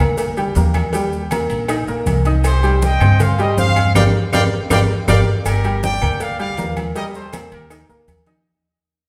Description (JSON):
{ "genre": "latin, salsa", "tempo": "159 BPM", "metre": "4/4", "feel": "straight", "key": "G minor", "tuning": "A4 = 442 Hz", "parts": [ { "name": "clear concert grand piano", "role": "accompaniment", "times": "0.0-8.4 s", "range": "G3 to Eb6", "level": "-24 LUFS", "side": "equal", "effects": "none" }, { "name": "upright bass", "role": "bass", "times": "0.0-8.4 s", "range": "G1 to G2", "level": "-20 LUFS", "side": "equal", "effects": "none" }, { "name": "agogo bells and timbales", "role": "percussion", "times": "0.0-8.5 s", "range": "none", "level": "-29 LUFS", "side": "equal", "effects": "none" }, { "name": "congas", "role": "percussion", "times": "0.0-8.5 s", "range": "none", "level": "-26 LUFS", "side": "equal", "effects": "none" }, { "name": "cowbell", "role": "percussion", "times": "0.2-8.5 s", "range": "none", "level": "-34 LUFS", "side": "equal", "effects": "none" }, { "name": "maracas", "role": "percussion", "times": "0.2-8.5 s", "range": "none", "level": "-38 LUFS", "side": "equal", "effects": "none" }, { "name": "claves", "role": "percussion", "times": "0.7-7.9 s", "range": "none", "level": "-35 LUFS", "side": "equal", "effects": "none" }, { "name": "clear trumpet section", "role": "melody", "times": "2.5-7.9 s", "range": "G4 to G5", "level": "-23 LUFS", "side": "equal", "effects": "none" } ], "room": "wet recital hall reverb, RT60 1.6 s", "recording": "recorded in a church or concert hall", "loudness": "-17 LUFS", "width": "mono", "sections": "0.0-5.5 A section; 5.5-8.5 B section", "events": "band accent 4.0-5.5; drum fill 4.3-5.5; fade-out 5.5-8.5", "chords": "0.0 Gm; 0.9 Eb; 2.4 Cm; 4.0 Gm7; 7.0 Eb" }